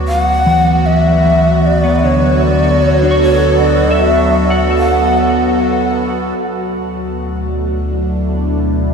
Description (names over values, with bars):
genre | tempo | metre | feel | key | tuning
ambient | 76 BPM | 4/4 | straight | D major | A4 = 440 Hz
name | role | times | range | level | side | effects
evolving wavetable pad | sustained chords | 0.0-8.9 s | B2 to D5 | -15 LUFS | right 1 dB | phaser, built-in reverb, shimmer reverb
warm sub bass | bass | 0.0-8.9 s | D2 | -18 LUFS | equal | none
breathy bright long shakuhachi | melody | 0.1-5.5 s | C#5 to F#5 | -16 LUFS | equal | shimmer reverb, ping-pong delay
clean electric guitar | arpeggios | 0.5-6.3 s | D3 to C#6 | -17 LUFS | equal | ensemble chorus, shimmer reverb, ping-pong delay
room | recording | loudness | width
wet cathedral reverb, RT60 5.4 s | dark, warm production | -11 LUFS | side -6 dB against mid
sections
0.0-6.4 A section; 6.4-8.9 B section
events
filter sweep on ambient pad 6.4-8.9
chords
0.0 Dmaj7; 6.4 D69